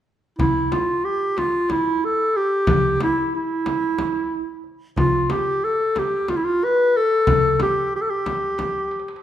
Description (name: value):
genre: Turkish makam ensemble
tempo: 183 BPM (eighths)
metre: 7/8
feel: straight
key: unclear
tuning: A4 = 441 Hz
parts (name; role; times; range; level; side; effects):
- breathy clarinet; melody; 0.4-9.2 s; E4 to B4; -19 LUFS; equal; none
- darbuka; percussion; 0.4-9.2 s; none; -27 LUFS; equal; none
- frame drum; percussion; 0.4-8.7 s; none; -25 LUFS; left 1 dB; none
room: wet recital hall reverb, RT60 1.3 s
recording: minimal, uncompressed stereo recording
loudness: -18 LUFS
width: side -11 dB against mid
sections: 0.4-9.2 A section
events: drum fill 8.9-9.2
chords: none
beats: | 0.39 0.72 1.05 1.37 1.70 2.03 2.36 | 2.68 3.01 3.34 3.67 3.99 4.32 4.65 | 4.98 5.30 5.63 5.96 6.29 6.62 6.95 | 7.27 7.60 7.93 8.26 8.59 8.91